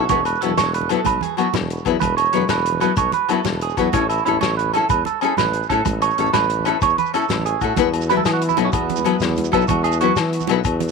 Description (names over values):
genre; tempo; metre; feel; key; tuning
highlife guitar band; 125 BPM (dotted quarters); 12/8; straight; E major; A4 = 440 Hz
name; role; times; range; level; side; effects
nylon-string guitar; accompaniment; 0.0-10.6 s; F#3 to B4; -22 LUFS; left 12 dB; none
clean electric guitar; arpeggios; 0.0-10.2 s; B3 to C#5; -20 LUFS; right 12 dB; phaser, tape echo
warm tuba; bass; 0.0-10.9 s; E1 to E3; -24 LUFS; left 1 dB; none
congas; percussion; 0.0-10.9 s; none; -30 LUFS; right 11 dB; none
warm soul drum kit; drums; 0.1-10.9 s; hi-hat, kick drum, snare drum; -26 LUFS; left 6 dB; none
agogo bells; percussion; 0.1-10.8 s; none; -28 LUFS; left 14 dB; none
shekere; percussion; 0.1-10.9 s; none; -30 LUFS; right 4 dB; none
combo organ; sustained chords; 7.8-10.9 s; B3 to F#4; -29 LUFS; left 2 dB; lush chorus
room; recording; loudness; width
light reverb; 1960s-style stereo with parts hard left and right; -16 LUFS; side -4 dB against mid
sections
0.0-7.8 A section; 7.8-10.9 B section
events
clean electric guitar solo 7.8-10.9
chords
0.1 Esus2; 3.9 A; 7.8 Esus2